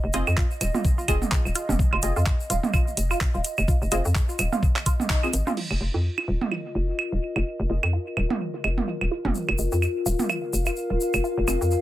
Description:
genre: minimal techno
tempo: 127 BPM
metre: 4/4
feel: swing 57% on 16ths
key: F minor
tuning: A4 = 441 Hz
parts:
  - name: hollow knocking FM bass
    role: bass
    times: 0.0-11.8 s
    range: Eb1 to F2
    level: -25 LUFS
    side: equal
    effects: sidechain pumping
  - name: warbly tape-like pad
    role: texture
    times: 0.0-11.8 s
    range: F4 to F5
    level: -32 LUFS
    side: left 2 dB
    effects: chorus, built-in reverb, sidechain pumping
  - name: resonant blip pluck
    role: riff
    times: 0.1-11.5 s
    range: Eb4 to F4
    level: -33 LUFS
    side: right 2 dB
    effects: phaser, cassette tape, sidechain pumping, digital delay
  - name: filtered dub chord stab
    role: stabs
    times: 0.1-11.6 s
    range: C4 to Eb5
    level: -33 LUFS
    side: left 1 dB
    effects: phaser, lush chorus, dub echo
  - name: garage drum kit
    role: drums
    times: 0.1-5.7 s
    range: crash cymbal, handclaps, hi-hat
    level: -29 LUFS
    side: right 1 dB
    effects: soft clipping on snare
  - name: egg shaker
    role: percussion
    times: 0.1-5.6, 9.3-11.8 s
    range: none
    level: -36 LUFS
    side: left 3 dB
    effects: none
  - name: electronic claves and toms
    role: percussion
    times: 0.3-11.6 s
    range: none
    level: -28 LUFS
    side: right 4 dB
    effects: none
  - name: electronic kick drum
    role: drums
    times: 0.4-5.2 s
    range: none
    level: -22 LUFS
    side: equal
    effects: none
room: moderate studio reverb, RT60 0.5 s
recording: dense, heavily limited modern master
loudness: -22 LUFS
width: side -14 dB against mid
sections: 0.0-5.6 A section; 5.6-11.8 B section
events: band accent 5.1; filter sweep on synth stab 5.6-11.8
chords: 0.0 F7(no3)

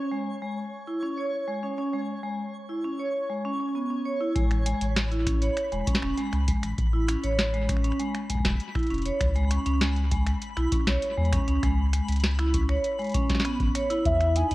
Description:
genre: IDM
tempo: 99 BPM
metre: 4/4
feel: straight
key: unclear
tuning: A4 = 440 Hz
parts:
  - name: vibraphone with medium hard mallets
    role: arpeggios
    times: 0.0-14.5 s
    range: G#3 to D#5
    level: -28 LUFS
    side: right 1 dB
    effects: tape echo
  - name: twinkling granular texture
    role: texture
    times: 0.0-14.5 s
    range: C#5 to B5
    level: -40 LUFS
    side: equal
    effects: built-in reverb
  - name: warm sub bass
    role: bass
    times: 4.4-14.5 s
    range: E1 to E2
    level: -26 LUFS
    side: equal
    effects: none
  - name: booming analog drum machine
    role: drums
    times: 4.4-14.5 s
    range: finger snaps, hi-hat, snare drum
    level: -31 LUFS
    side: equal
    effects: none
  - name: electronic kick drum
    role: drums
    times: 4.4-14.2 s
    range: none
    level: -28 LUFS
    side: equal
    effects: none
  - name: warbly nostalgic lead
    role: melody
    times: 14.1-14.5 s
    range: E5 to G#5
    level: -24 LUFS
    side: equal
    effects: analog chorus
room: light reverb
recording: worn, warbling old tape, cassette tape, warbly pitch drift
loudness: -24 LUFS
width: side -18 dB against mid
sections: 0.0-4.4 A section; 4.4-14.5 B section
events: none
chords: 0.0 C#5; 4.4 Amaj7; 9.2 C#7(no3)

